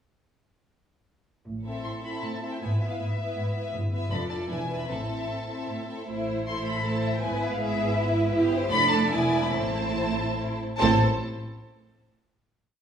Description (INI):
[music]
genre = quick classical-period movement for string orchestra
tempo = 139-162 BPM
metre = 3/4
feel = rubato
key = A minor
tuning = A4 = 445 Hz
[part]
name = rich studio cello section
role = bass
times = 1.4-11.0 s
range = E2 to B4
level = -31 LUFS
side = right 2 dB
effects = none
[part]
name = rich studio double bass section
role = bass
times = 1.5-11.0 s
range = E1 to A1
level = -30 LUFS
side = right 1 dB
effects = none
[part]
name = clear studio violin section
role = second line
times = 1.6-11.0 s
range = E4 to E5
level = -33 LUFS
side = left 2 dB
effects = none
[part]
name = dark studio viola section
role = accompaniment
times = 1.6-11.0 s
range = A3 to F4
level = -32 LUFS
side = right 2 dB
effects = none
[part]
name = warm symphonic violin section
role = melody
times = 1.8-11.0 s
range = E5 to C6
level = -30 LUFS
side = left 1 dB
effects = none
[sound]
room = wet stone room reverb, RT60 1.3 s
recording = heard from further back in the room, small room ambience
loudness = -24 LUFS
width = side -8 dB against mid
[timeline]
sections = 1.5-6.1 A section; 6.1-10.8 A section; 10.8-12.0 final chord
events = none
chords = 1.5 Am; 2.6 E/G#; 3.7 Em/G; 4.1 Dm/F; 4.5 E7; 4.9 Am; 7.2 E/G#; 8.3 Em/G; 8.7 Dm/F; 9.1 E7; 9.5 Am